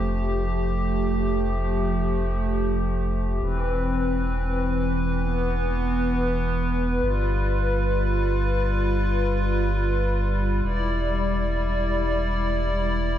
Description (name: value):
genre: IDM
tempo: free time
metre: none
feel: none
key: unclear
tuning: A4 = 440 Hz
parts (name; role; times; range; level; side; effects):
- hollow soft pad; sustained chords; 0.0-13.2 s; E3 to D5; -24 LUFS; equal; chorus
- warm sub bass; bass; 0.0-13.2 s; E1 to G1; -25 LUFS; equal; none
room: light reverb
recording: none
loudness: -22 LUFS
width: side -11 dB against mid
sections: 0.0-13.2 A section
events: none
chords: 0.0 Fadd9; 3.4 Cmaj7/E; 7.0 G7; 10.6 Em7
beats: free time